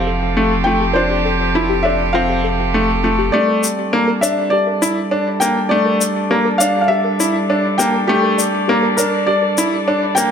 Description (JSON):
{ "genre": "piano and strings electronica", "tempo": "101 BPM", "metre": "4/4", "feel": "straight", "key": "G dorian", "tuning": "A4 = 440 Hz", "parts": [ { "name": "felt-muted upright piano", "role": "melody", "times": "0.0-10.3 s", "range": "G4 to G5", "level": "-19 LUFS", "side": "equal", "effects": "ping-pong delay" }, { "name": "warm string quartet", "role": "sustained chords", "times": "0.0-10.3 s", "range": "E3 to D5", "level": "-20 LUFS", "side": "right 1 dB", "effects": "low-pass filter" }, { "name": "soft round pluck", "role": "arpeggios", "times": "0.0-10.3 s", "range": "F4 to D5", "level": "-26 LUFS", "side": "left 3 dB", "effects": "chorus, ping-pong delay" }, { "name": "bright upright piano", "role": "riff", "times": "0.0-10.3 s", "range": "A3 to E4", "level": "-18 LUFS", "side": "left 1 dB", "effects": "ping-pong delay" }, { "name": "warm sub bass", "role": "bass", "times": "0.0-3.3 s", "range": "F1", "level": "-23 LUFS", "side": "right 1 dB", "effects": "none" }, { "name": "shaker", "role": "drums", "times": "0.1-10.3 s", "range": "none", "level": "-20 LUFS", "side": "left 5 dB", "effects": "low-pass filter on perc, low-pass filter on room" } ], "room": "moderate echo chamber reverb, RT60 2.3 s", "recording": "low-pass filter", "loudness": "-14 LUFS", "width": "side -7 dB against mid", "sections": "0.0-3.3 A section; 3.3-10.3 B section", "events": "build-up 3.3-10.3; filter sweep on string quartet 3.3-10.3", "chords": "0.0 Fadd9; 3.3 Gm", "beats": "0.37 | 0.96 1.55 2.15 2.74 | 3.34 3.93 4.52 5.12 | 5.71 6.31 6.90 7.50 | 8.09 8.68 9.28 9.87" }